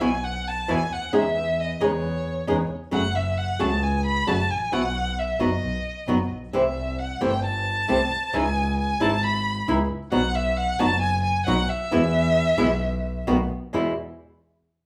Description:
tango; 134 BPM; 4/4; rubato; E major; A4 = 440 Hz
warm violin; second line; 0.0-13.3 s; C#5 to B5; -28 LUFS; equal
flamenco guitar; accompaniment; 0.0-13.9 s; E2 to G#4; -26 LUFS; equal
clear double bass; bass; 0.0-13.9 s; F#1 to E2; -30 LUFS; equal
wet large studio reverb, RT60 0.9 s; band playing live in one room; -24 LUFS; mono
0.0-13.7 A section; 13.7-14.9 B section
violin solo 0.0-13.7
0.0 Esus2; 1.1 C#madd9/E; 2.9 F#m; 4.7 Bsus4; 5.6 B; 6.5 C6; 8.3 C#madd9; 10.1 B; 11.9 E; 13.3 B7; 13.7 E
0.24 0.69 | 1.14 1.59 2.04 2.48 | 2.93 3.38 3.82 4.27 | 4.72 5.17 5.62 6.08 | 6.54 6.99 7.44 7.89 | 8.34 8.79 9.23 9.68 | 10.12 10.57 11.02 11.47 | 11.91 12.36 12.82 13.28 | 13.73

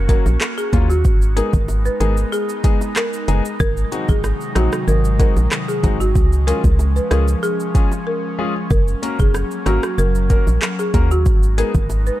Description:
dancehall; 94 BPM; 4/4; straight; A4 = 439 Hz
airy breathy pad; sustained chords; 0.0-12.2 s; C3 to Gb4; -26 LUFS; equal; chorus, sidechain pumping
organ-like FM bass; bass; 0.0-12.1 s; Gb1 to Eb2; -17 LUFS; equal
folk marimba with medium mallets; melody; 0.1-12.2 s; Gb4 to Cb5; -24 LUFS; right 1 dB; ping-pong delay
clear grand piano; accompaniment; 0.1-11.7 s; Gb3 to Bb4; -26 LUFS; left 5 dB
afro-pop drum kit; drums; 0.1-12.2 s; handclaps, hi-hat, kick drum, rim click, shaker; -18 LUFS; equal; overdrive
bongos; percussion; 0.3-12.1 s; -32 LUFS; right 2 dB
studio ambience; -15 LUFS; side -15 dB against mid
0.0-12.2 A section
break 8.1-8.7
0.0 Gb; 1.0 Abm; 3.6 Ab7; 6.2 Db; 8.7 Gb; 11.3 Abm
0.41 | 1.05 1.69 2.32 2.96 | 3.60 4.24 4.88 5.52 | 6.15 6.79 7.43 8.07 | 8.71 9.35 9.98 10.62 | 11.26 11.90

